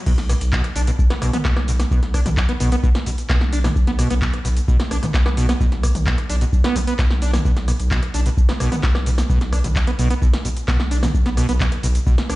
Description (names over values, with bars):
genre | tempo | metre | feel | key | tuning
acid house | 130 BPM | 4/4 | straight | unclear | A4 = 438 Hz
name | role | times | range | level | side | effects
acid bass, saw | riff | 0.1-12.4 s | B2 to D4 | -25 LUFS | right 1 dB | tube saturation, analog chorus, analog delay
saturated sub bass | bass | 0.1-12.4 s | A1 to B1 | -21 LUFS | equal | sidechain pumping
electro analog drum machine | drums | 0.1-12.4 s | crash cymbal, handclaps, hi-hat, rim click, shaker, snare drum, toms | -25 LUFS | equal | none
electronic kick drum | drums | 0.1-12.2 s | none | -19 LUFS | equal | none
room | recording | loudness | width
light reverb | played on a big sound system in a bare room, large studio reverb, nothing above 10.4 kHz | -16 LUFS | side -18 dB against mid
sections
0.1-12.4 A section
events
drop 0.1-12.4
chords
none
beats
| 0.07 0.53 0.99 1.45 | 1.91 2.37 2.83 3.29 | 3.76 4.22 4.68 5.14 | 5.60 6.07 6.53 6.99 | 7.45 7.91 8.37 8.83 | 9.29 9.76 10.22 10.68 | 11.14 11.60 12.06